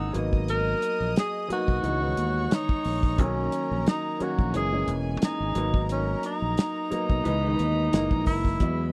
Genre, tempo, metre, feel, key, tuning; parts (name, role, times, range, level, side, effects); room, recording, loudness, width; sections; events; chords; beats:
lush 1970s-style soul; 89 BPM; 4/4; swing 54% on 16ths; A4 = 438 Hz
breathy tenor saxophone; melody; 0.0-8.9 s; C#4 to A#4; -31 LUFS; equal
warm studio violin section; second line; 0.0-8.9 s; G#4 to E6; -41 LUFS; equal; slapback echo
clear baby grand piano; accompaniment; 0.0-8.9 s; D#3 to D#5; -33 LUFS; equal
overdriven fingered electric bass; bass; 0.0-8.9 s; E1 to E2; -31 LUFS; equal
cloth-damped thuddy drum kit; drums; 0.1-8.8 s; hi-hat, kick drum, snare drum; -27 LUFS; equal
little or no reverb; dry, close 1970s-style studio recording; -26 LUFS; mono
0.0-8.6 A section
0.1 G#m9; 1.8 C#7sus2; 3.2 Bmaj9; 4.5 F#9; 5.6 G#m9; 7.2 C#m9; 7.9 F#13
| 0.48 1.16 1.83 2.51 | 3.19 3.86 4.54 5.22 | 5.89 6.57 7.25 7.93 | 8.60